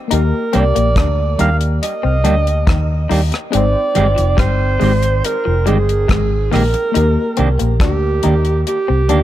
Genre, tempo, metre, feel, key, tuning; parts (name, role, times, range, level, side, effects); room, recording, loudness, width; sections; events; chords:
lovers rock reggae; 70 BPM; 4/4; straight; Eb major; A4 = 436 Hz
mellow FM electric piano; accompaniment; 0.0-9.2 s; Bb3 to G5; -24 LUFS; left 4 dB; chorus, dub echo
mellow alto saxophone; melody; 0.1-9.2 s; G4 to F5; -19 LUFS; right 3 dB; tape echo
electric guitar through a small old amp; riff; 0.1-9.2 s; F3 to Eb4; -24 LUFS; left 10 dB; spring reverb
vintage muted fingered electric bass; bass; 0.1-9.2 s; F1 to Eb2; -16 LUFS; equal
deep reggae drum kit; drums; 0.1-9.2 s; hi-hat, kick drum, rim click; -19 LUFS; equal
semi-hollow electric guitar; stabs; 0.5-9.2 s; Eb3 to G4; -22 LUFS; right 3 dB; dub echo
light reverb, studio reverb; -13 LUFS; side -13 dB against mid
0.0-9.2 A section
0.1 Ebmaj7; 3.5 Abmaj7; 7.0 Ebmaj7